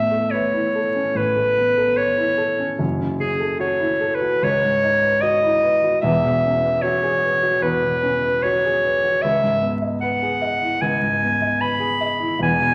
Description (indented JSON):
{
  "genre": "classical, impressionist duo for clarinet and grand piano",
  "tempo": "74 BPM",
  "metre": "4/4",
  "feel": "rubato",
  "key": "unclear",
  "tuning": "A4 = 440 Hz",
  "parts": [
    { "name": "clear clarinet", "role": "melody", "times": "0.0-12.7 s", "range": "G#4 to B5", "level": "-21 LUFS", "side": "equal", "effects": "none" },
    { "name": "dark baby grand piano", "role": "accompaniment", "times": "0.0-12.7 s", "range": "E1 to D#5", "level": "-26 LUFS", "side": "equal", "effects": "none" }
  ],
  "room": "wet recital hall reverb, RT60 1.4 s",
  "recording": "vinyl crackle",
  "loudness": "-20 LUFS",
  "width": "mono",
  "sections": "0.0-12.7 A section",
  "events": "none",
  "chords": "0.0 Aadd9; 2.8 F#m7; 4.4 C#m11; 6.0 E69; 9.2 C#m11"
}